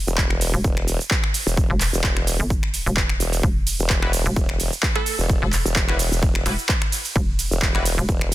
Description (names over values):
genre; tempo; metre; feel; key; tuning
bass house; 129 BPM; 4/4; swing 54% on 16ths; E minor; A4 = 440 Hz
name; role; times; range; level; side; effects
hollow knocking FM bass; bass; 0.0-8.1 s; E1 to G1; -23 LUFS; equal; tube saturation, sidechain pumping
formant-sweep wobble bass; bass; 0.1-8.3 s; E1; -23 LUFS; equal; chorus, tube saturation, sidechain pumping
big-room dance drum kit; drums; 0.1-8.3 s; cabasa, finger snaps, handclaps, hi-hat, ride cymbal; -24 LUFS; right 1 dB; overdrive
electronic kick drum; drums; 0.2-8.2 s; none; -22 LUFS; equal; overdrive
band-passed chord stab; stabs; 4.0-7.8 s; G3 to B4; -31 LUFS; left 2 dB; chorus, sidechain pumping, ping-pong delay
glassy wavetable pluck; melody; 5.0-5.1 s; A4; -31 LUFS; right 5 dB; chorus, vintage 12-bit sampler grit, ping-pong delay
room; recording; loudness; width
little or no reverb; dense, heavily limited modern master; -18 LUFS; side -16 dB against mid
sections
0.0-8.3 A section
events
none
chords
none